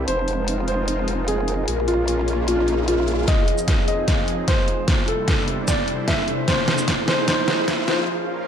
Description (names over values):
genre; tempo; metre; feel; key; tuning
heavy wobble dubstep; 150 BPM; 4/4; half-time; unclear; A4 = 440 Hz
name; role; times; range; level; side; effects
supersaw pad; sustained chords; 0.0-8.5 s; F2 to F5; -29 LUFS; right 1 dB; sidechain pumping
growl bass; bass; 0.0-3.3 s; F1 to Bb1; -24 LUFS; equal; chorus, overdrive
ethereal airy pad; texture; 0.0-8.1 s; C3 to Ab5; -29 LUFS; left 1 dB; ensemble chorus, built-in reverb, phaser, sidechain pumping
warm baby grand piano; melody; 0.1-8.1 s; F4 to E5; -24 LUFS; equal; low-pass filter, digital delay
dubstep drum kit; drums; 0.1-8.0 s; hi-hat, shaker, snare drum; -24 LUFS; equal; none
riser; sound effects; 1.2-8.1 s; none; -30 LUFS; equal; none
electronic kick drum; drums; 3.3-7.8 s; none; -22 LUFS; equal; none
room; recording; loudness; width
light reverb, digital ambience; dark, warm production, high-pass filter; -18 LUFS; side -8 dB against mid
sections
0.0-3.3 A section; 3.3-8.5 B section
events
riser 1.2-3.3, 3.3-8.1; build-up 3.3-8.5; drum fill 3.3-8.1; filter sweep on grand piano 3.3-8.5; filter sweep 3.3-8.5; break 8.1-8.5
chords
0.1 Fm7; 1.7 Bbm; 3.3 Fm7; 4.9 Cadd9; 6.5 Fm7